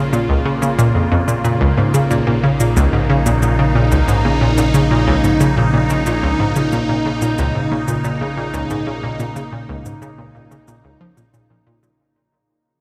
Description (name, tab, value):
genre	ambient, sequencer-driven space music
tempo	91 BPM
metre	4/4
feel	straight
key	Bb minor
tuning	A4 = 440 Hz
part	evolving wavetable pad	sustained chords	0.0-12.0 s	Db3 to F4	-21 LUFS	equal	phaser, built-in reverb
part	analog drone	bass	0.0-12.0 s	Bb1	-25 LUFS	equal	chorus
part	hollow square pluck	riff	0.1-11.9 s	Db2 to F3	-19 LUFS	equal	chorus, analog delay
part	congas and shaker	percussion	0.1-12.0 s	none	-32 LUFS	equal	analog delay
room	wet cathedral reverb, RT60 5.0 s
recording	in a vast, echoing space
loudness	-16 LUFS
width	mono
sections	0.0-12.0 A section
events	fade-in on ambient pad 0.0-12.0; fade-out 5.0-12.0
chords	0.0 Bbm